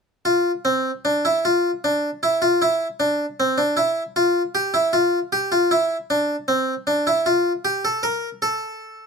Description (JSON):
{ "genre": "classical, baroque-style 3-part fugue for harpsichord", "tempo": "52 BPM (dotted quarters)", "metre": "12/8", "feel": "straight", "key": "F major", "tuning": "A4 = 440 Hz", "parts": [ { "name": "harpsichord", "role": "solo", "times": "0.3-9.1 s", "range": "C4 to Bb4", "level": "-18 LUFS", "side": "equal", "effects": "none" } ], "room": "light reverb", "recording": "close, detailed microphones", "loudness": "-18 LUFS", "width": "side -5 dB against mid", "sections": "0.3-9.1 A section", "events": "none", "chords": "none" }